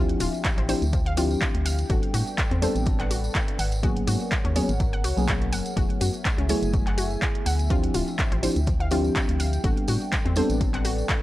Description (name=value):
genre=deep house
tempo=124 BPM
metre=4/4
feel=swing 54% on 16ths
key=unclear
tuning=A4 = 440 Hz
part: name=dark analog pad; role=sustained chords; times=0.0-11.2 s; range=F3 to G#5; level=-37 LUFS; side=equal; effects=chorus, phaser, sidechain pumping
part: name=analog pluck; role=arpeggios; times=0.0-10.9 s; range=F3 to F#5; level=-34 LUFS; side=left 2 dB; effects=chorus, sidechain pumping, tape echo
part: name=mellow FM electric piano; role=stabs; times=0.0-11.2 s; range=F3 to A4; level=-28 LUFS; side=left 1 dB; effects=chorus, phaser, vintage 12-bit sampler grit, sidechain pumping, tape echo
part: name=organ-like FM bass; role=bass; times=0.0-11.0 s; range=D1 to A2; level=-26 LUFS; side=equal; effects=sidechain pumping
part: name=house drum kit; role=drums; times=0.1-11.2 s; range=handclaps, hi-hat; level=-31 LUFS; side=equal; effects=overdrive
part: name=tambourine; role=percussion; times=0.2-11.2 s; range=none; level=-39 LUFS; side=right 2 dB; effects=none
part: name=electronic kick drum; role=drums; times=0.4-11.2 s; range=none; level=-26 LUFS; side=equal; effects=none
room=little or no reverb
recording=dry, gritty hardware recording, cassette tape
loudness=-22 LUFS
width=side -16 dB against mid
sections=0.0-11.2 A section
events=none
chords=0.0 Dm11; 1.9 Am11; 3.6 G#m11; 5.8 F#m11; 7.7 Dm11; 9.6 Am11